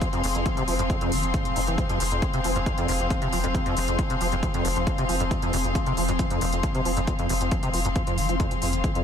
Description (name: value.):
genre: driving peak-time techno.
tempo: 136 BPM.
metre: 4/4.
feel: straight.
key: F minor.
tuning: A4 = 440 Hz.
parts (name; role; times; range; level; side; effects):
acid bass, saw; riff; 0.0-9.0 s; F1 to F3; -29 LUFS; equal; ensemble chorus, vintage 12-bit sampler grit, sidechain pumping, tape echo.
swarming drone; drone; 0.0-9.0 s; F3 to C4; -32 LUFS; equal; built-in reverb, sidechain pumping.
electronic hi-hat; drums; 0.0-9.0 s; none; -33 LUFS; equal; overdrive.
electronic kick drum; drums; 0.0-8.9 s; none; -28 LUFS; equal; overdrive.
rich chamber string section; texture; 0.0-9.0 s; C4 to C6; -29 LUFS; left 4 dB; sidechain pumping.
saturated sub bass; bass; 0.2-8.8 s; F1; -29 LUFS; equal; overdrive, sidechain pumping, low-pass filter.
room: light reverb, digital ambience.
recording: none.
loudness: -22 LUFS.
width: side -8 dB against mid.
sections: 0.0-9.0 A section.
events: none.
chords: 0.0 Fm.